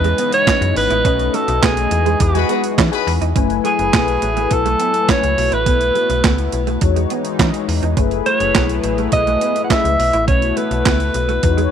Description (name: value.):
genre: early-eighties boogie funk.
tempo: 104 BPM.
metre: 4/4.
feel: straight.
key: F# dorian.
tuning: A4 = 440 Hz.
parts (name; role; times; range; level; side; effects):
breathy alto saxophone; melody; 0.0-11.7 s; F#4 to F#5; -18 LUFS; right 2 dB; none.
mellow synth brass; accompaniment; 0.0-11.7 s; G#3 to G#5; -23 LUFS; left 16 dB; chorus.
chorused pulse-width pad; sustained chords; 0.0-11.7 s; C#3 to G#5; -26 LUFS; left 1 dB; none.
clean electric guitar; riff; 0.0-11.7 s; G#3 to E4; -26 LUFS; right 13 dB; ensemble chorus.
slap-like FM bass; bass; 0.0-11.7 s; F#1 to E3; -20 LUFS; left 1 dB; none.
clean 12-bit digital drum machine; drums; 0.0-11.7 s; handclaps, hi-hat, kick drum, snare drum; -18 LUFS; right 2 dB; none.
warm horn section; second line; 2.3-3.1 s; F#4 to B4; -23 LUFS; left 13 dB; none.
room: light reverb.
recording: 1960s-style stereo with parts hard left and right.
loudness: -14 LUFS.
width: side -8 dB against mid.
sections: 0.0-3.4 A section; 3.4-11.7 B section.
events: band accent 1.0-3.4.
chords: 0.0 C#m9; 1.0 B9; 1.9 Emaj9; 3.4 F#m11; 5.4 B7sus4; 6.8 Emaj13; 8.0 F#m11; 10.0 B7sus4.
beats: 0.47 | 1.05 1.63 2.20 2.78 | 3.36 3.93 4.51 5.09 | 5.67 6.24 6.82 7.39 | 7.97 8.55 9.13 9.70 | 10.28 10.86 11.43.